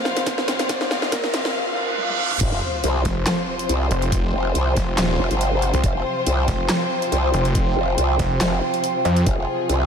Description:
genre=heavy wobble dubstep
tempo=140 BPM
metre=4/4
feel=swing 53% on 16ths, half-time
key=unclear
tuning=A4 = 441 Hz
part: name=felt-muted upright piano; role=melody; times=0.0-1.6 s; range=Bb3 to C5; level=-29 LUFS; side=equal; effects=diffuse ambient delay
part: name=warm chamber string section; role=sustained chords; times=0.0-9.9 s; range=C3 to F5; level=-26 LUFS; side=left 2 dB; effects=sidechain pumping
part: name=riser, reverse cymbal and sub drop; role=sound effects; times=0.0-4.1 s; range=none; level=-27 LUFS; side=right 3 dB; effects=none
part: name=warbly tape-like pad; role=texture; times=1.0-9.9 s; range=F4 to G5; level=-28 LUFS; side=right 2 dB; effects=chorus, built-in reverb, sidechain pumping
part: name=dubstep drum kit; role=drums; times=0.1-9.8 s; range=crash cymbal, handclaps, hi-hat, snare drum, toms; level=-25 LUFS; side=equal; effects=overdrive
part: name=electronic kick drum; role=drums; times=0.3-9.4 s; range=none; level=-24 LUFS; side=equal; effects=none
part: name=growl bass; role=bass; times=2.4-9.9 s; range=F1 to C2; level=-21 LUFS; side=equal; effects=chorus, overdrive
part: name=snarling distorted saw bass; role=bass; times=3.0-9.2 s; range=Eb1 to F2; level=-21 LUFS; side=equal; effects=distortion, overdrive
room=moderate huge ambient reverb, RT60 3.7 s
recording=dreamy mix soaked in reverb, high-pass filter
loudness=-18 LUFS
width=side -7 dB against mid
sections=0.0-2.4 A section; 2.4-9.9 B section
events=build-up 0.0-2.4; drum fill 0.0-1.6, 2.0-2.4; riser 0.0-1.6; filter sweep on felt piano 0.0-2.4; filter sweep 0.0-2.4; reverse cymbal 1.6-2.4; drop 2.4-9.9; impact 2.4-4.1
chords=0.0 F5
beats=0.27 | 0.69 1.12 1.55 1.98 | 2.41 2.84 3.27 3.69 | 4.12 4.55 4.98 5.41 | 5.84 6.27 6.69 7.12 | 7.55 7.98 8.41 8.84 | 9.27 9.69

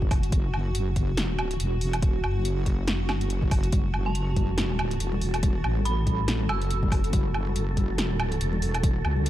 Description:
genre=deep dubstep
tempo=141 BPM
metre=4/4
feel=swing 58% on 16ths, half-time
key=F# minor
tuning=A4 = 441 Hz
part: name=granular cloud pad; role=sustained chords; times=0.0-9.3 s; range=F#4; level=-35 LUFS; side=right 1 dB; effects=built-in reverb
part: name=wobble bass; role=bass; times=0.0-9.3 s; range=E1 to C#2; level=-26 LUFS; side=equal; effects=chorus
part: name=electronic kick drum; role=drums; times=0.0-8.9 s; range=none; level=-24 LUFS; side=equal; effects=overdrive
part: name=deep house drum kit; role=drums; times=0.1-9.3 s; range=hi-hat, snare drum, woodblock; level=-31 LUFS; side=right 1 dB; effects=overdrive
part: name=congas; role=percussion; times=3.7-9.2 s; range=none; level=-34 LUFS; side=left 4 dB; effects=none
part: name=wind-like tuned noise texture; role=texture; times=4.7-9.3 s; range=A4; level=-37 LUFS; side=right 3 dB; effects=built-in reverb
part: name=dark detuned synth bell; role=melody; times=4.1-6.9 s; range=A5 to E6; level=-37 LUFS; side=right 4 dB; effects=chorus, phaser, vintage 12-bit sampler grit, dub echo
room=little or no reverb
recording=dark, warm production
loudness=-23 LUFS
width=side -13 dB against mid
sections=0.0-9.3 A section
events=none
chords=0.0 F#m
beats=| 0.32 0.75 1.17 1.60 | 2.02 2.45 2.88 3.30 | 3.73 4.15 4.58 5.00 | 5.43 5.86 6.28 6.71 | 7.13 7.56 7.98 8.41 | 8.83 9.26

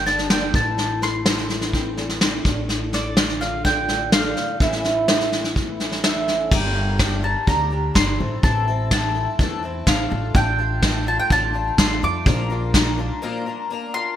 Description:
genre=indie folk with a building arrangement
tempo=125 BPM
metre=4/4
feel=straight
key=D minor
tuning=A4 = 439 Hz
part: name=mandolin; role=melody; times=0.0-14.2 s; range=D5 to D6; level=-24 LUFS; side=right 1 dB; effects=digital delay
part: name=fingerpicked steel-string acoustic guitar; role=accompaniment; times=0.0-6.5 s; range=E2 to G4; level=-28 LUFS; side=left 2 dB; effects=ensemble chorus
part: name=upright bass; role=bass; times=0.0-13.1 s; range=G1 to F2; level=-26 LUFS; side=equal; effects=none
part: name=soft brush drum kit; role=drums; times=0.1-12.9 s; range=crash cymbal, kick drum, snare drum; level=-20 LUFS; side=equal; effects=gated reverb
part: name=picked swing-style acoustic guitar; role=accompaniment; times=6.5-14.2 s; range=A2 to Bb4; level=-28 LUFS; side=left 5 dB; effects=lush chorus
room=light reverb, small room reverb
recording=bright 1980s-style digital production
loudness=-18 LUFS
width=side -10 dB against mid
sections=0.0-6.5 A section; 6.5-14.2 B section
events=break 13.2-14.2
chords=0.0 Gm; 0.5 Am; 2.5 Dm/A; 4.6 A; 6.5 Gm; 8.2 Am; 10.1 Dm/A; 12.3 Bb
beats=0.30 | 0.78 1.26 1.74 2.22 | 2.70 3.17 3.65 4.13 | 4.61 5.08 5.56 6.04 | 6.52 7.00 7.47 7.95 | 8.43 8.91 9.39 9.87 | 10.35 10.82 11.30 11.78 | 12.26 12.74 13.22 13.70

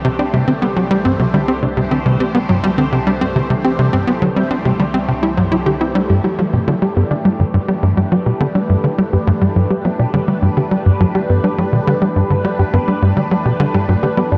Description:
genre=ambient, sequencer-driven space music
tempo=104 BPM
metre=4/4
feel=straight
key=G major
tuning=A4 = 440 Hz
part: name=phased analog pad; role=sustained chords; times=0.0-14.4 s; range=C2 to C5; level=-23 LUFS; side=equal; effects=phaser, chorus
part: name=soft round pluck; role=arpeggios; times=0.0-14.4 s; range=G2 to G4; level=-22 LUFS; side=equal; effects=chorus, tape echo
part: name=tight sequencer bass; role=riff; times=0.0-14.4 s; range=G2 to G4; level=-18 LUFS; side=equal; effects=analog chorus, tape echo
room=moderate huge ambient reverb, RT60 7.3 s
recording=worn, warbling old tape, cassette tape, warbly pitch drift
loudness=-16 LUFS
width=mono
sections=0.0-14.4 A section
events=none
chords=0.0 C; 6.1 G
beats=0.33 0.91 | 1.48 2.06 2.64 3.21 | 3.79 4.37 4.94 5.52 | 6.10 6.67 7.25 7.83 | 8.40 8.98 9.56 10.14 | 10.71 11.29 11.87 12.44 | 13.02 13.60 14.17

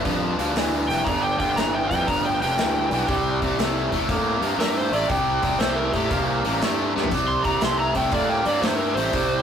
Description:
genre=blues rock power trio and southern rock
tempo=119 BPM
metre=4/4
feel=swing 66% on 8ths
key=unclear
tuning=A4 = 440 Hz
part: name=overdriven tonewheel organ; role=sustained chords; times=0.0-9.4 s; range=G3 to C5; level=-34 LUFS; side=right 3 dB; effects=none
part: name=distorted electric guitar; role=riff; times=0.0-9.4 s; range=G2 to Bb3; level=-23 LUFS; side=equal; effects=overdrive
part: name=fuzz fingered electric bass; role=bass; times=0.0-9.4 s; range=F1 to A2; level=-28 LUFS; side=equal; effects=overdrive
part: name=big rock drum kit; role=drums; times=0.1-9.3 s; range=hi-hat, kick drum, snare drum, splash cymbal, toms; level=-28 LUFS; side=equal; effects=none
part: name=overdriven slide guitar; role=melody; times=0.9-9.4 s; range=G4 to C6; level=-24 LUFS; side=right 1 dB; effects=none
room=light reverb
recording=rough rehearsal-room recording, warm saturation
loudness=-20 LUFS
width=side -8 dB against mid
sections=0.0-9.4 A section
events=electric slide guitar solo 0.0-9.4; drum fill 6.9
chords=0.0 G; 3.1 C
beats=0.07 0.57 | 1.08 1.58 2.09 2.59 | 3.09 3.60 4.10 4.61 | 5.11 5.61 6.12 6.62 | 7.12 7.63 8.13 8.64 | 9.14

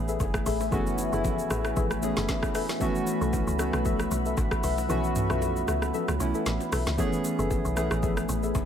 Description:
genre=amapiano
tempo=115 BPM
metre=4/4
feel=swing 55% on 16ths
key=F# minor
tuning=A4 = 440 Hz
part: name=soft electric-piano-like synth keys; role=accompaniment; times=0.0-8.7 s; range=E3 to G#4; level=-30 LUFS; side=right 3 dB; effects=chorus
part: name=deep dark ambient pad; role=sustained chords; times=0.0-8.7 s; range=A3 to B5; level=-32 LUFS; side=left 2 dB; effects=chorus, built-in reverb
part: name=woody log drum bass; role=bass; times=0.0-8.7 s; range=F#1 to C#2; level=-30 LUFS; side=equal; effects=none
part: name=deep mellow chord stab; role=stabs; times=0.1-8.5 s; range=G#4 to E5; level=-34 LUFS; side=left 7 dB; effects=chorus, digital delay
part: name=afro-pop drum kit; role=drums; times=0.1-8.7 s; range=hi-hat, kick drum, rim click, shaker, snare drum, toms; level=-31 LUFS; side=equal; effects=overdrive
part: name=bongos and congas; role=percussion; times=0.2-8.7 s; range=none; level=-40 LUFS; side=left 8 dB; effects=none
room=light reverb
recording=none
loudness=-25 LUFS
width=side -9 dB against mid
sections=0.0-8.7 A section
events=kick muted 4.9-7.0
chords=0.0 F#m11; 2.8 B7sus4; 7.0 F#m11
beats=0.20 | 0.72 1.24 1.77 2.29 | 2.81 3.33 3.85 4.38 | 4.90 5.42 5.94 6.46 | 6.98 7.50 8.03 8.55

